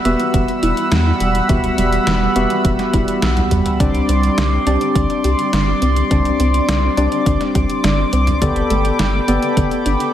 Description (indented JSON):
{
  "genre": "synthwave",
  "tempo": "104 BPM",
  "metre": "4/4",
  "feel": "straight",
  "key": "unclear",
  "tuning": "A4 = 440 Hz",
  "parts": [
    { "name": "chorused pulse-width pad", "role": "sustained chords", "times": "0.0-10.1 s", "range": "G3 to E6", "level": "-20 LUFS", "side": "right 2 dB", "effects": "none" },
    { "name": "soft round pluck", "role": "arpeggios", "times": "0.1-10.1 s", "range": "D3 to G4", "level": "-24 LUFS", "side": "right 2 dB", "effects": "chorus, diffuse ambient delay" },
    { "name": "tine electric piano", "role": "stabs", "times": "0.1-10.1 s", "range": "B3 to E5", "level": "-20 LUFS", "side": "left 3 dB", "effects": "medium tremolo, diffuse ambient delay" },
    { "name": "round analog bass", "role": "bass", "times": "0.1-10.0 s", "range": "E1 to E2", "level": "-18 LUFS", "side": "equal", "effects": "none" },
    { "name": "detuned 8-bit digital drum machine", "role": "drums", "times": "0.1-10.1 s", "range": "hi-hat, snare drum, toms", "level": "-24 LUFS", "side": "equal", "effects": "none" },
    { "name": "electronic kick drum", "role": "drums", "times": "0.3-9.7 s", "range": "none", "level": "-20 LUFS", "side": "equal", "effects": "overdrive" }
  ],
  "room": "moderate plate reverb, RT60 1.8 s, digital ambience",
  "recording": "dreamy mix soaked in reverb",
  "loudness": "-14 LUFS",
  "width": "side -11 dB against mid",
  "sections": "0.0-10.1 A section",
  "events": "none",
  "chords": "0.0 Emadd9; 3.8 Csus2; 8.4 Gadd9",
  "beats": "0.34 0.92 | 1.49 2.07 2.65 3.23 | 3.80 4.38 4.96 5.53 | 6.11 6.69 7.26 7.84 | 8.42 8.99 9.57"
}